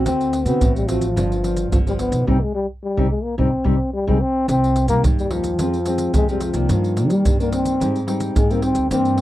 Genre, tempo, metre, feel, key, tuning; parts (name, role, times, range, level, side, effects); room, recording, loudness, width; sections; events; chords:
samba and choro; 108 BPM; 4/4; straight; C minor; A4 = 441 Hz
breathy trombone; melody; 0.0-9.2 s; F3 to C4; -21 LUFS; left 1 dB
nylon-string guitar; accompaniment; 0.0-9.2 s; F2 to F#4; -24 LUFS; left 1 dB
upright bass; bass; 0.0-9.2 s; G1 to G3; -22 LUFS; right 1 dB
maracas, surdo and pandeiro; percussion; 0.1-9.2 s; -22 LUFS; right 1 dB
light reverb; dry, close 1970s-style studio recording; -17 LUFS; side -15 dB against mid
0.0-4.5 A section; 4.5-9.2 A section
band accent 2.3-4.5
0.1 D7; 1.2 G7; 2.3 Cm; 4.5 Cm7; 5.6 Fm; 6.7 Ebmaj7/G; 7.8 Abmaj7